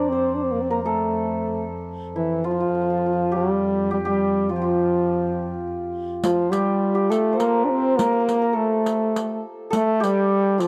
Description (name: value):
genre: Persian modal ensemble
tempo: 103 BPM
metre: 3/4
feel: straight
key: F dastgah mahur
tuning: A4 = 440 Hz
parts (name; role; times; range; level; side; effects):
- mellow French horn; melody; 0.0-10.7 s; E3 to D4; -23 LUFS; equal; none
- santur; second line; 0.0-10.7 s; E4 to D5; -28 LUFS; equal; none
- dark cello; drone; 0.0-6.3 s; F2; -36 LUFS; equal; none
- riq; percussion; 6.2-10.7 s; none; -32 LUFS; equal; none
room: light reverb, studio reverb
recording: dry, close 1970s-style studio recording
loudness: -22 LUFS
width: mono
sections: 0.0-6.2 A section; 6.2-10.7 B section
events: none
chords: none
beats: 0.41 | 0.99 1.58 2.16 | 2.74 3.33 3.91 | 4.49 5.08 5.66 | 6.24 6.82 7.40 | 7.98 8.56 9.14 | 9.73 10.31